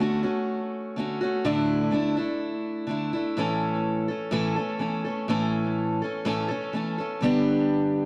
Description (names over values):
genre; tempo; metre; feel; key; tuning
rock; 125 BPM; 4/4; straight; A mixolydian; A4 = 442 Hz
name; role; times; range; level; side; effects
picked steel-string acoustic guitar; solo; 0.0-8.1 s; G2 to A4; -27 LUFS; equal; tape echo
room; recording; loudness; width
moderate large studio reverb, RT60 0.8 s; none; -27 LUFS; mono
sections
0.0-3.4 A section; 3.4-8.1 B section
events
none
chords
0.0 Dmaj7; 1.5 Asus4; 3.4 A; 7.2 G